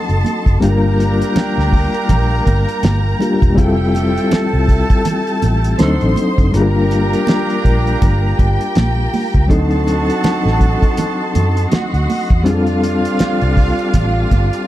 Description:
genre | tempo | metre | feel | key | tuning
lush 1970s-style soul | 81 BPM | 4/4 | swing 58% on 16ths | unclear | A4 = 440 Hz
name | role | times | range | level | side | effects
warm symphonic violin section | second line | 0.0-14.7 s | F4 to C6 | -23 LUFS | right 1 dB | none
reed electric piano | accompaniment | 0.0-14.7 s | F#3 to Bb4 | -18 LUFS | left 2 dB | fast tremolo
tonewheel organ | sustained chords | 0.0-14.7 s | F4 to C6 | -27 LUFS | equal | slow rotary speaker
mellow horn section | stabs | 0.0-14.7 s | Bb3 to A4 | -25 LUFS | right 4 dB | none
vintage muted fingered electric bass | bass | 0.1-14.5 s | E1 to F#2 | -16 LUFS | equal | none
cloth-damped thuddy drum kit | drums | 0.1-14.7 s | hi-hat, kick drum, snare drum | -16 LUFS | equal | none
congas | percussion | 0.2-14.5 s | none | -24 LUFS | right 4 dB | none
room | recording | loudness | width
small room ambience | dark, warm production | -12 LUFS | side -14 dB against mid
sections
0.0-14.7 A section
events
none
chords
0.0 D7b9; 0.6 Gm7; 3.6 Fmaj9; 5.8 D7b9; 6.5 Gm7; 9.5 D7b9; 12.5 F69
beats
| 0.61 1.35 2.10 2.84 | 3.58 4.32 5.06 5.80 | 6.54 7.28 8.02 8.76 | 9.50 10.24 10.98 11.72 | 12.46 13.20 13.94

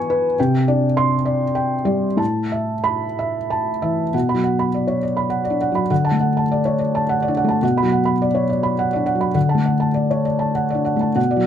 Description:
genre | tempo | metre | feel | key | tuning
neoclassical minimalist piano | 89-108 BPM | 3/4 | rubato | B minor from 4.1 s | A4 = 440 Hz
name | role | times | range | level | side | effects
felt-muted upright piano | solo | 0.0-11.5 s | A2 to C#6 | -17 LUFS | equal | none
room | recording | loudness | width
light reverb | close, detailed microphones | -17 LUFS | side -9 dB against mid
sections
0.0-4.1 A section; 4.1-11.2 B section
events
none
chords
0.4 Csus2; 2.2 Asus2; 4.1 Bm; 5.9 D; 7.6 Bm; 9.4 D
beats
| 0.37 0.96 1.56 | 2.19 2.86 3.50 | 4.14 4.74 5.33 | 5.91 6.50 7.07 | 7.63 8.18 8.76 | 9.36 9.96 10.57 | 11.18

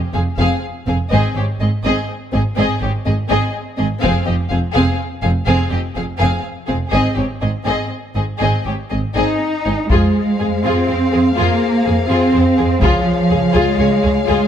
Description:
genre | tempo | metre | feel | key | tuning
cinematic, epic orchestral film score | 82 BPM (dotted quarters) | 6/8 | straight | F minor | A4 = 441 Hz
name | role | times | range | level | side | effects
dark symphonic violin section | melody | 0.1-14.5 s | Db5 to F5 | -26 LUFS | left 4 dB | none
warm symphonic violin section | second line | 0.1-14.5 s | F4 to Db5 | -23 LUFS | left 3 dB | none
warm symphonic viola section | accompaniment | 0.1-14.5 s | C4 to Ab4 | -23 LUFS | equal | none
rich chamber double bass section | bass | 0.1-14.4 s | F1 to F2 | -20 LUFS | right 2 dB | none
warm symphonic cello section | bass | 0.2-14.5 s | F2 to Eb4 | -19 LUFS | right 2 dB | none
mellow French horn section | sustained chords | 9.9-14.5 s | Ab4 to Db5 | -22 LUFS | left 10 dB | none
solo taiko drums | drums | 9.9-13.7 s | none | -18 LUFS | left 1 dB | none
room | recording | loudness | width
light reverb | close, detailed microphones | -14 LUFS | side -9 dB against mid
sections
0.0-9.9 A section; 9.9-14.5 B section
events
build-up 0.0-9.9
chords
0.0 Fm; 1.1 Ab; 4.0 Fm; 6.9 Ab; 9.9 Fm; 12.8 Db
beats
0.39 | 1.12 1.84 | 2.57 3.30 | 4.03 4.75 | 5.47 6.20 | 6.92 7.66 | 8.40 9.16 | 9.90 10.64 | 11.37 12.09 | 12.82 13.54 | 14.27

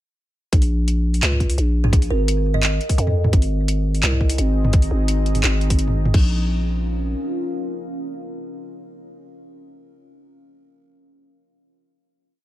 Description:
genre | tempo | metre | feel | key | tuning
half-time drum and bass | 171 BPM | 4/4 | half-time | Bb minor | A4 = 440 Hz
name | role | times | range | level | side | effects
growling 808-style bass | bass | 0.5-7.2 s | Ab1 to F2 | -19 LUFS | equal | none
drum and bass drum kit | drums | 0.5-6.2 s | crash cymbal, handclaps, hi-hat, toms | -23 LUFS | equal | none
electronic kick drum | drums | 0.5-6.2 s | none | -16 LUFS | equal | none
kalimba | melody | 1.8-2.9 s | Ab4 to Eb5 | -29 LUFS | right 4 dB | vintage 12-bit sampler grit, ping-pong delay
deep dark ambient pad | sustained chords | 4.0-9.5 s | C4 to F5 | -29 LUFS | equal | chorus, built-in reverb, sidechain pumping
room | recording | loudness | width
little or no reverb | none | -17 LUFS | side -14 dB against mid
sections
0.5-6.1 drop; 6.1-8.9 final chord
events
drop 0.5-6.1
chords
0.5 Bb5; 3.3 Ab; 6.1 Bbm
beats
| 0.53 0.88 1.23 1.58 | 1.93 2.28 2.63 2.98 | 3.33 3.68 4.03 4.38 | 4.74 5.09 5.44 5.79 | 6.14 6.49 6.84 7.19 | 7.54 7.89 8.24 8.60

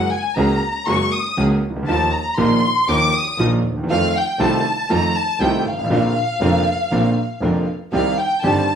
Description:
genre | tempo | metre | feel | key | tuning
tango | 119 BPM | 4/4 | rubato | unclear | A4 = 440 Hz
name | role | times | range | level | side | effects
warm chamber violin section | second line | 0.0-8.8 s | F5 to Eb6 | -20 LUFS | left 1 dB | slapback echo
warm concert grand piano | accompaniment | 0.0-8.7 s | F1 to G4 | -19 LUFS | right 1 dB | none
rich symphonic string section | stabs | 0.0-8.7 s | Bb3 to Bb4 | -32 LUFS | right 4 dB | none
clear double bass | bass | 0.0-8.6 s | F1 to F2 | -25 LUFS | right 2 dB | none
room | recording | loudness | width
wet studio reverb, RT60 0.6 s | rough home demo mix, small room ambience | -16 LUFS | side -8 dB against mid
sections
0.0-8.8 A section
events
violin section solo 0.0-8.8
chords
0.0 Gbadd9; 1.9 Ebsus2; 3.9 F7; 5.9 Bbadd9; 7.9 Cm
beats
0.37 0.87 1.38 | 1.88 2.38 2.88 3.39 | 3.89 4.39 4.89 5.40 | 5.90 6.41 6.91 7.42 | 7.93 8.44

